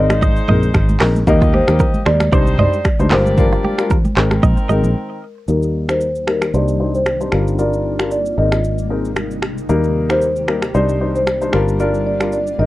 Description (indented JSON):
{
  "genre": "afrobeats",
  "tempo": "114 BPM",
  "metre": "4/4",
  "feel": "swing 55% on 16ths",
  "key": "Eb major",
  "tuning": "A4 = 440 Hz",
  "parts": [
    { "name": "marimba with soft mallets", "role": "melody", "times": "0.0-12.7 s", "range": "Bb4 to Eb5", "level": "-21 LUFS", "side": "equal", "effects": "low-pass filter" },
    { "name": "warm horn section", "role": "second line", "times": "0.0-5.2 s", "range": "Eb3 to Eb5", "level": "-26 LUFS", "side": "left 1 dB", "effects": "none" },
    { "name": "warm baby grand piano", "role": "accompaniment", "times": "0.0-12.7 s", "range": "G3 to C5", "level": "-20 LUFS", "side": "left 4 dB", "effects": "low-pass filter" },
    { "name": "direct-recorded clean electric guitar", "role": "riff", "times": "0.0-4.8 s", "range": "F4 to Eb5", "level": "-24 LUFS", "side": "right 6 dB", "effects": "none" },
    { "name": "fingered electric bass", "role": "bass", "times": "0.0-12.7 s", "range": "G1 to Eb2", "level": "-18 LUFS", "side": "equal", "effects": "none" },
    { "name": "afro-pop drum kit", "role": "drums", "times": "0.1-12.6 s", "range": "finger snaps, handclaps, hi-hat, kick drum, rim click, shaker, toms", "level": "-17 LUFS", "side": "equal", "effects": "none" },
    { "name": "congas", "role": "percussion", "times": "0.1-4.8 s", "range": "none", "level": "-24 LUFS", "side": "right 1 dB", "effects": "none" },
    { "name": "granular cloud pad", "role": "sustained chords", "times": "6.1-12.7 s", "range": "C3 to G4", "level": "-26 LUFS", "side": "equal", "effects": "built-in reverb, low-pass filter" }
  ],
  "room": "light reverb",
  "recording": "worn, warbling old tape, cassette tape, warbly pitch drift",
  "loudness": "-13 LUFS",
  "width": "side -16 dB against mid",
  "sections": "0.0-5.5 A section; 5.5-12.7 B section",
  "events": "break 5.0-5.5; filter sweep 5.5-12.7",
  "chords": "0.0 Abadd9; 1.3 Eb; 2.3 Cmadd9; 3.1 Gm7; 4.2 Abadd9; 5.5 Eb; 6.5 Cmadd9; 7.3 Gm7; 8.4 Abadd9; 9.7 Eb; 10.7 Cmadd9; 11.5 Gm7",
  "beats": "0.22 0.75 | 1.27 1.80 2.33 2.85 | 3.38 3.90 4.43 4.96 | 5.48 6.01 6.54 7.06 | 7.59 8.12 8.64 9.17 | 9.69 10.22 10.75 11.27 | 11.80 12.32"
}